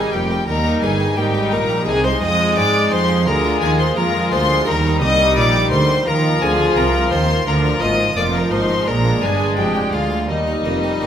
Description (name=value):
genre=classical, baroque-style concerto movement with solo episodes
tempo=86 BPM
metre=4/4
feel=straight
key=unclear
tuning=A4 = 440 Hz
part: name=rich chamber violin section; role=melody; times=0.0-11.1 s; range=Eb5 to Eb6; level=-23 LUFS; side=left 3 dB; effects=none
part: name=warm violin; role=melody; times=0.0-11.1 s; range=Eb4 to Eb5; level=-21 LUFS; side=left 2 dB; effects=none
part: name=dark chamber violin section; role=second line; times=0.0-11.1 s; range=D4 to G4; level=-24 LUFS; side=left 2 dB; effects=none
part: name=dark chamber viola section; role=accompaniment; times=0.0-11.1 s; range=F3 to Ab3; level=-23 LUFS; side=equal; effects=none
part: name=harpsichord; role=accompaniment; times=0.0-11.1 s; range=D2 to Ab4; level=-26 LUFS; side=equal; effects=none
part: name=rich chamber cello section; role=bass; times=0.0-11.1 s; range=D2 to Ab3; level=-23 LUFS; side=right 2 dB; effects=none
part: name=rich chamber double bass section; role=bass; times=0.0-11.1 s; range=F1 to Ab2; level=-22 LUFS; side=right 2 dB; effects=none
room=wet recital hall reverb, RT60 1.6 s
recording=none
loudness=-14 LUFS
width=side -9 dB against mid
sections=0.0-11.1 A section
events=none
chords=0.0 Eb; 1.9 Ab/C; 3.3 Bb7/D; 4.7 Eb; 6.1 F5; 7.5 Bb; 8.9 Bb7; 10.3 Eb